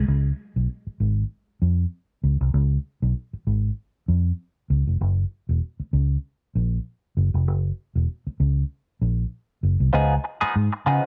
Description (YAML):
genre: funk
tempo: 97 BPM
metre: 4/4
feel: swing 56% on 16ths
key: Db mixolydian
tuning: A4 = 441 Hz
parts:
  - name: vintage muted fingered electric bass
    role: bass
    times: 0.0-11.0 s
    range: Fb1 to Db3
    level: -23 LUFS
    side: equal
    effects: none
  - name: semi-hollow electric guitar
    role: accompaniment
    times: 9.9-11.1 s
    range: F3 to Ab4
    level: -26 LUFS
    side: equal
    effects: wah, subtle chorus
room: little or no reverb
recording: none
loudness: -24 LUFS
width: mono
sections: 0.1-9.9 A section; 9.9-11.1 B section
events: none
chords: 0.1 Db; 5.0 Gb; 9.9 Db9